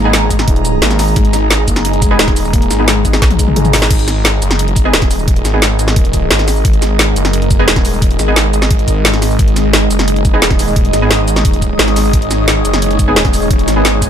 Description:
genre	dark technical drum and bass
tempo	175 BPM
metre	4/4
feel	straight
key	unclear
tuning	A4 = 441 Hz
part	deep dark ambient pad	sustained chords	0.0-14.1 s	G#3 to C#5	-20 LUFS	equal	chorus, built-in reverb, sidechain pumping
part	felt-muted upright piano	arpeggios	0.0-3.9 s	G#3 to G#4	-21 LUFS	left 5 dB	sidechain pumping, digital delay
part	orchestra-hit-like synth stab	stabs	0.0-13.9 s	B3 to G#4	-19 LUFS	right 2 dB	built-in reverb, digital delay
part	snarling distorted saw bass	bass	0.0-14.1 s	D#1 to B1	-15 LUFS	equal	distortion, sidechain pumping
part	ethereal airy pad	texture	0.0-14.1 s	G#4 to D#6	-20 LUFS	right 1 dB	ensemble chorus, built-in reverb, sidechain pumping
part	drum and bass drum kit	drums	0.1-14.1 s	crash cymbal, hi-hat, shaker, snare drum, toms	-15 LUFS	equal	overdrive, small room ambience
part	electronic kick drum	drums	0.3-14.1 s	none	-13 LUFS	equal	overdrive, small room ambience
part	growling FM bass	bass	0.5-1.1 s	D#1 to G#1	-14 LUFS	equal	tube saturation
room	little or no reverb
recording	none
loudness	-9 LUFS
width	side -9 dB against mid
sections	0.0-3.9 A section; 3.9-14.1 A section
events	drop 0.0-3.9, 3.9-14.1; drum fill 3.2-3.9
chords	0.0 G#m

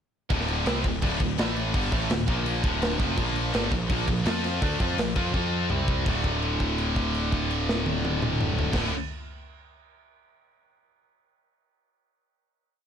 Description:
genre	heavy metal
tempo	167 BPM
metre	4/4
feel	straight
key	D minor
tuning	A4 = 443 Hz
part	heavy high-gain guitar	riff	0.3-8.9 s	D2 to F4	-31 LUFS	left 14 dB	distortion
part	heavy high-gain guitar	riff	0.3-8.9 s	D2 to F4	-32 LUFS	right 14 dB	distortion
part	heavy high-gain guitar	riff	0.3-8.9 s	D2 to F4	-33 LUFS	equal	distortion
part	fuzz picked electric bass	bass	0.3-8.9 s	D1 to F2	-29 LUFS	equal	overdrive
part	tight metal drum kit	drums	0.3-8.8 s	crash cymbal, kick drum, snare drum, toms	-28 LUFS	equal	none
room	small room ambience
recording	dark, warm production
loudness	-23 LUFS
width	side -8 dB against mid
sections	0.3-6.1 riff; 6.1-9.0 final chord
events	drum fill 5.3-6.1; held note 6.1-8.7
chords	0.3 D5; 1.4 A5; 1.7 D5; 2.3 Bb5; 2.6 Dm; 3.2 Bb5; 4.3 F5; 4.6 Bb5; 5.3 F5; 5.7 C5; 6.1 D5

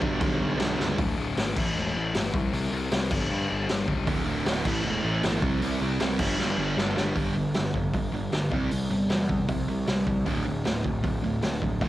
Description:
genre	punk rock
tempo	155 BPM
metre	4/4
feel	straight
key	unclear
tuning	A4 = 441 Hz
part	sludgy distorted guitar	riff	0.0-11.9 s	D2 to C4	-31 LUFS	left 6 dB	overdrive, cassette tape
part	sludgy distorted guitar	riff	0.0-1.0, 4.1-11.9 s	D2 to C4	-29 LUFS	right 4 dB	overdrive, cassette tape
part	fuzz picked electric bass	bass	0.0-11.9 s	D1 to G2	-31 LUFS	equal	overdrive
part	raw garage drum kit	drums	0.0-11.9 s	crash cymbal, hi-hat, kick drum, snare drum	-28 LUFS	equal	cassette tape
room	small room ambience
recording	home recording on cassette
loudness	-24 LUFS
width	side -15 dB against mid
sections	1.0-7.2 A section; 7.2-11.9 B section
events	drum fill 0.8, 6.4-7.2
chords	0.0 G/B; 1.0 D5; 1.6 A5; 2.3 C5; 3.1 G5; 4.1 D5; 4.7 A5; 5.4 C5; 6.2 G5; 8.5 C; 10.3 D5

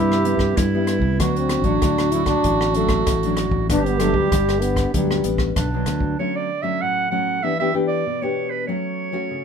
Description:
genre	samba and choro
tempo	96 BPM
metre	4/4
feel	straight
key	G major, D major from 6.2 s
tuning	A4 = 440 Hz
part	breathy trombone	melody	0.0-5.5 s	G3 to E4	-23 LUFS	left 2 dB	none
part	clear clarinet	second line	0.0-9.4 s	D4 to F#5	-24 LUFS	right 6 dB	none
part	nylon-string guitar	accompaniment	0.0-9.4 s	G2 to G4	-24 LUFS	left 2 dB	none
part	fingered electric bass with an envelope filter	bass	0.0-6.2 s	G1 to G2	-23 LUFS	equal	none
part	open jazz drum kit	drums	0.1-6.2 s	hi-hat, kick drum, rim click	-24 LUFS	equal	none
room	moderate studio reverb, RT60 0.5 s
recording	minimal, uncompressed stereo recording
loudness	-18 LUFS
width	side -7 dB against mid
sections	0.0-6.2 A section; 6.2-9.4 B section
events	clarinet solo 6.2-9.4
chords	0.0 Cmaj7; 1.2 D; 3.7 Gmaj7; 6.2 Dmaj7; 7.4 Em7; 8.7 F#m

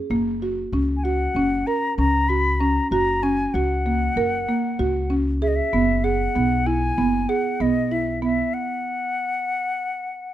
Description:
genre	contemporary instrumental, contemporary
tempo	192 BPM (eighths)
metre	9/8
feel	straight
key	F# mixolydian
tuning	A4 = 440 Hz
part	buzzing marimba with medium mallets	arpeggios	0.0-8.5 s	A#3 to A#4	-22 LUFS	right 2 dB	none
part	upright bass	bass	0.1-8.4 s	F#1 to C#2	-25 LUFS	left 1 dB	none
part	concert flute	melody	1.0-10.3 s	D#5 to B5	-24 LUFS	left 3 dB	none
room	light reverb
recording	close, detailed microphones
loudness	-20 LUFS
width	side -12 dB against mid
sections	0.0-10.3 A section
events	stop 8.5-10.3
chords	0.0 F#; 5.7 E/F#; 8.5 N.C.

